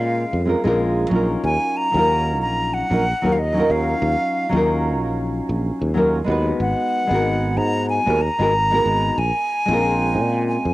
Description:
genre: sunset chillout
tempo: 93 BPM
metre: 4/4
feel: swing 57% on 16ths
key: Eb minor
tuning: A4 = 440 Hz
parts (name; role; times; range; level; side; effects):
- breathy silver concert flute; melody; 0.0-10.7 s; Eb5 to Bb5; -22 LUFS; equal; tape echo
- nylon-string guitar; accompaniment; 0.0-10.7 s; Gb3 to Cb5; -21 LUFS; equal; auto-pan, cassette tape, tape echo
- sustaining fretless electric bass; bass; 0.0-10.7 s; Ab1 to Bb2; -22 LUFS; equal; none
room: moderate spring reverb, RT60 1.1 s, small room ambience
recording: home recording on cassette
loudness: -17 LUFS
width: side -18 dB against mid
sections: 0.0-10.7 A section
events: none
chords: 0.0 Bbm9; 1.4 Ebm9; 6.6 Abm9; 9.2 Bbm9

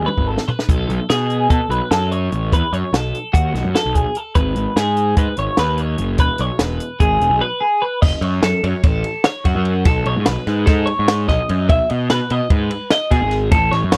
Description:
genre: math rock and midwest emo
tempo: 294 BPM (eighths)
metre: 9/8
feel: straight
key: E major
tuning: A4 = 440 Hz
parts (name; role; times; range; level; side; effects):
- twelve-string electric guitar; arpeggios; 0.0-14.0 s; F#4 to E5; -23 LUFS; equal; lush chorus
- fuzz picked electric bass; bass; 0.0-14.0 s; E1 to B2; -22 LUFS; equal; overdrive
- compact cocktail drum kit; drums; 0.1-14.0 s; crash cymbal, hi-hat, kick drum, ride cymbal, snare drum, toms; -19 LUFS; equal; none
room: little or no reverb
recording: dry, close 1970s-style studio recording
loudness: -18 LUFS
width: mono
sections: 0.0-8.0 A section; 8.0-14.0 B section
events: drum fill 0.1-0.7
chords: 0.0 G#m; 0.7 B7(no3); 4.4 G#m; 6.2 E; 8.0 F#m; 9.9 B7; 11.7 Emaj7/B (rootless)

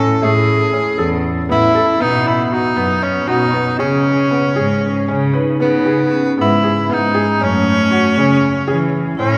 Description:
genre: contemporary instrumental, chamber music in an uneven meter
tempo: 235 BPM (eighths)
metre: 7/8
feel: straight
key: C# minor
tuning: A4 = 440 Hz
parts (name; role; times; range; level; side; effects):
- warm tenor saxophone; melody; 0.0-9.4 s; B3 to A4; -19 LUFS; equal; none
- vibraphone with medium mallets; second line; 0.0-9.4 s; A3 to E4; -22 LUFS; equal; none
- felt-muted upright piano; arpeggios; 0.0-9.4 s; A3 to B4; -24 LUFS; equal; none
- warm cello; bass; 0.0-9.4 s; E2 to E3; -21 LUFS; equal; none
room: wet church reverb, RT60 3.0 s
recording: recorded in a church or concert hall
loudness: -15 LUFS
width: mono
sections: 0.0-5.6 A section; 5.6-9.4 B section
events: none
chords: 0.0 A; 2.0 B; 3.8 C#5; 7.4 F#madd9

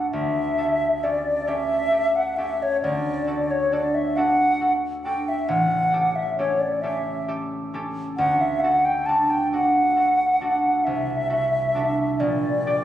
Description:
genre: classical, romantic duo for flute and harp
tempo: 45 BPM (dotted quarters)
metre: 6/8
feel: rubato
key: D major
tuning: A4 = 440 Hz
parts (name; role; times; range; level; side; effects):
- mellow silver concert flute; melody; 0.0-12.8 s; C#5 to A5; -21 LUFS; equal; none
- concert harp; accompaniment; 0.0-12.8 s; A1 to D5; -26 LUFS; right 1 dB; none
room: wet concert hall reverb, RT60 2.2 s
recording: recorded on a phone in the room, club reverb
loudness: -20 LUFS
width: side -12 dB against mid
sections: 0.0-12.8 A section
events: none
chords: 0.1 A7/D; 2.8 D; 5.5 A7; 8.2 D; 10.8 D7/C; 12.2 Gm/Bb

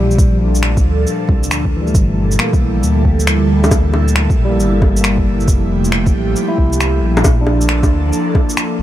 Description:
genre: future garage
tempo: 136 BPM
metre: 4/4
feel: swing 65% on 16ths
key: G dorian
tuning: A4 = 442 Hz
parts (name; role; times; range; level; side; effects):
- barky tine electric piano; accompaniment; 0.0-8.8 s; E3 to E4; -20 LUFS; left 1 dB; sidechain pumping, low-pass filter, dub echo
- airy breathy pad; sustained chords; 0.0-8.8 s; Bb2 to A4; -20 LUFS; right 1 dB; chorus, phaser, sidechain pumping
- dark detuned saw bass; bass; 0.0-8.8 s; F1 to D2; -16 LUFS; equal; sidechain pumping
- electronic shaker, finger snaps and bongos; drums; 0.1-8.7 s; none; -20 LUFS; left 1 dB; none
- electronic kick drum; drums; 0.2-8.5 s; none; -14 LUFS; equal; overdrive
room: light reverb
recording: vinyl crackle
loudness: -12 LUFS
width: side -13 dB against mid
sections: 0.0-8.8 A section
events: filter sweep on tine electric piano 0.0-8.8; break 8.6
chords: 0.2 Bbmaj7; 2.0 Gm69; 5.5 Fmaj9; 7.2 Bbmaj7

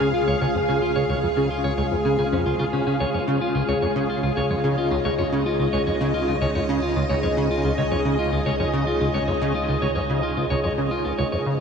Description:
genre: ambient, sequencer-driven space music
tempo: 110 BPM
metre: 4/4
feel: straight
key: unclear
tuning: A4 = 441 Hz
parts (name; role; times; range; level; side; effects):
- string machine, full ensemble; sustained chords; 0.0-11.6 s; Ab4 to F5; -24 LUFS; equal; ensemble chorus
- clean electric guitar; arpeggios; 0.0-11.4 s; Db4 to Db5; -28 LUFS; equal; auto-pan, analog delay
- plucky analog bass; riff; 0.0-11.6 s; Db2 to Db3; -24 LUFS; equal; ensemble chorus, analog delay
- analog drone; bass; 0.0-11.6 s; Db2; -31 LUFS; equal; chorus
- wind-like tuned noise texture; texture; 0.0-11.6 s; F4 to F5; -32 LUFS; left 2 dB; built-in reverb, wide subtle chorus
room: wet huge ambient reverb, RT60 7.9 s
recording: dreamy mix soaked in reverb, nothing above 10.7 kHz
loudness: -20 LUFS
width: side -6 dB against mid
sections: 0.0-11.6 A section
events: none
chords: 0.0 Db

